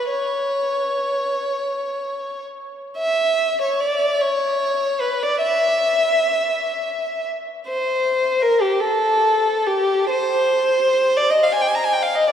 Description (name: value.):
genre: classical, free, expressive piece for unaccompanied violin.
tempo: 30-59 BPM (dotted quarters).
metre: 6/8.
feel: rubato.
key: E dorian.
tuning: A4 = 438 Hz.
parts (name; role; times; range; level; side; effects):
rich violin; solo; 0.0-12.3 s; G4 to A#5; -18 LUFS; equal; none.
room: wet cathedral reverb, RT60 5.3 s.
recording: heard from further back in the room.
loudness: -17 LUFS.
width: side -9 dB against mid.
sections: 0.0-3.0 A section; 3.0-12.3 A section.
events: none.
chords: none.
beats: | 0.10 1.42 | 2.98 4.22 | 5.43 6.57 | 7.69 8.81 | 10.11 11.18 | 12.28.